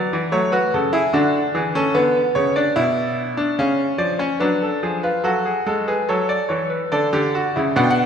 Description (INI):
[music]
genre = classical, baroque-style 3-part fugue for grand piano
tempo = 73 BPM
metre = 4/4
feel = straight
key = unclear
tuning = A4 = 440 Hz
[part]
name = bright concert grand piano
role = solo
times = 0.0-8.1 s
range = B2 to G5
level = -17 LUFS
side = equal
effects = none
[sound]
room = wet concert hall reverb, RT60 2.3 s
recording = recorded in a church or concert hall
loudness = -17 LUFS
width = side -7 dB against mid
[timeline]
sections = 0.0-6.9 A section; 6.9-8.1 B section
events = none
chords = 0.3 F#m; 1.9 Bm; 3.6 C#7; 5.3 F#m; 6.9 D